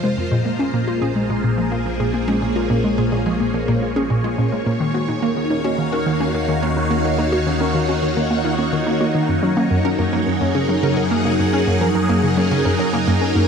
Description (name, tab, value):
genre	ambient, sequencer-driven space music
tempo	107 BPM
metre	4/4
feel	straight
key	Bb minor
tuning	A4 = 440 Hz
part	phased string machine	sustained chords	0.0-13.5 s	Eb3 to Gb5	-20 LUFS	equal	ensemble chorus, phaser
part	wide unison pluck	arpeggios	0.0-13.5 s	Ab3 to C5	-25 LUFS	right 2 dB	auto-pan, analog delay
part	hollow square pluck	riff	0.0-13.4 s	F2 to Bb4	-21 LUFS	equal	chorus, analog delay
part	analog drone	bass	0.0-13.5 s	Bb1 to Gb2	-28 LUFS	equal	chorus
room	wet huge ambient reverb, RT60 7.8 s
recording	dreamy mix soaked in reverb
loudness	-16 LUFS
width	side -6 dB against mid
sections	0.0-13.5 A section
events	filter sweep on synth arpeggio sound 0.0-13.5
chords	0.3 Bbm7; 4.8 Ebm9; 9.3 Gb6